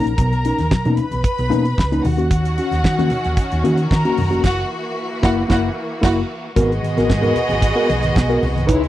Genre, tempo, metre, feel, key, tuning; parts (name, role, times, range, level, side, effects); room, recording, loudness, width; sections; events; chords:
disco; 113 BPM; 4/4; straight; G# minor; A4 = 440 Hz
dark studio violin section; second line; 0.0-8.9 s; G#3 to B5; -23 LUFS; right 1 dB
mellow tine electric piano; accompaniment; 0.0-8.8 s; G#2 to B4; -19 LUFS; left 2 dB; medium stereo tremolo
hollow-body short-scale fingered electric bass; bass; 0.0-8.9 s; E#1 to D#3; -20 LUFS; right 1 dB
damped 70s drum kit; drums; 0.1-8.9 s; crash cymbal, hi-hat, kick drum, snare drum; -18 LUFS; right 1 dB
congas; percussion; 0.2-8.8 s; -29 LUFS; left 2 dB
clear studio string section; sustained chords; 2.3-8.9 s; B2 to F#4; -27 LUFS; equal
small room ambience; dry, close 1970s-style studio recording; -16 LUFS; side -14 dB against mid
0.0-6.6 A section; 6.6-8.9 B section
band accent 4.4-6.6
0.0 Bmaj7; 2.0 D#m7; 4.4 F#7; 6.6 G#m7